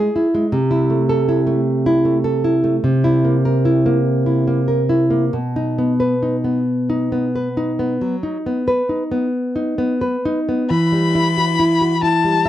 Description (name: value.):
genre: romantic duo for violin and classical guitar.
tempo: 43-54 BPM (dotted quarters).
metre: 12/8.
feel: rubato.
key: E minor.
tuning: A4 = 443 Hz.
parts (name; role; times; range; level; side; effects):
nylon-string guitar; accompaniment; 0.0-12.5 s; B2 to E5; -16 LUFS; equal; none.
rich violin; melody; 10.7-12.5 s; A5 to B5; -18 LUFS; left 5 dB; none.
room: little or no reverb.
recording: dry, close 1970s-style studio recording.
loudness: -15 LUFS.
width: side -12 dB against mid.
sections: 0.0-10.7 A section; 10.7-12.5 B section.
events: none.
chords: 0.0 C#m (rootless); 0.5 Am/C; 2.8 C7; 5.3 B; 10.7 Em.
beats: | 0.53 1.67 2.83 4.05 | 5.33 6.67 8.02 9.34 | 10.71 12.03.